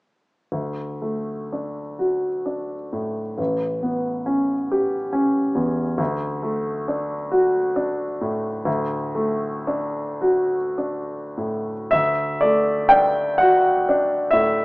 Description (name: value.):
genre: classical, romantic nocturne for solo piano.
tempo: 33-48 BPM (dotted quarters).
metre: 6/8.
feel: rubato.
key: D major.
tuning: A4 = 440 Hz.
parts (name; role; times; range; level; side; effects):
clear concert grand piano; solo; 0.5-14.6 s; A1 to G5; -20 LUFS; equal; none.
room: moderate stone room reverb, RT60 0.9 s.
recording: small speaker sound.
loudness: -20 LUFS.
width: side -24 dB against mid.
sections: 0.5-11.9 A section; 11.9-14.6 B section.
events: none.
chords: 0.5 D; 3.4 A9; 6.0 D.